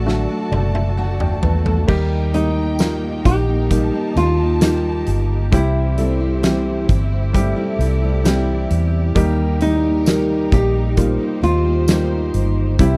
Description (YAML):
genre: pop ballad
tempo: 66 BPM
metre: 4/4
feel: straight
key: unclear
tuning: A4 = 440 Hz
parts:
  - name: felt-muted upright piano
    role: accompaniment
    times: 0.0-13.0 s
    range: C3 to A5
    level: -25 LUFS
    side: equal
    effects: none
  - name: warm studio string section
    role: sustained chords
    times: 0.0-13.0 s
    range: G3 to A5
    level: -32 LUFS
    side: equal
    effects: none
  - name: picked steel-string acoustic guitar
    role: arpeggios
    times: 0.0-13.0 s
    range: C3 to G4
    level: -30 LUFS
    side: equal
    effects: none
  - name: vintage muted fingered electric bass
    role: bass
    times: 0.0-13.0 s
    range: F#1 to E2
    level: -22 LUFS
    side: equal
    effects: none
  - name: huge arena drum kit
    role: drums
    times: 0.1-13.0 s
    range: crash cymbal, hi-hat, kick drum, snare drum, toms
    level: -21 LUFS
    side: equal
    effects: none
  - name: mellow French horn section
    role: second line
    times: 1.9-13.0 s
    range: Eb3 to A4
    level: -32 LUFS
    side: equal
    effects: none
  - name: nylon-string guitar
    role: melody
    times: 2.3-13.0 s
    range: Eb4 to G4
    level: -24 LUFS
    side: equal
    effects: none
  - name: tambourine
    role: percussion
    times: 2.8-12.1 s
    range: none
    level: -36 LUFS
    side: equal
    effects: none
room: little or no reverb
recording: dry, close 1970s-style studio recording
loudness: -18 LUFS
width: mono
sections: 0.0-1.9 A section; 1.9-13.0 B section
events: felt piano fill 0.0-1.9; drum fill 0.1-1.9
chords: 0.0 D; 1.9 Eb; 5.5 C; 9.2 Eb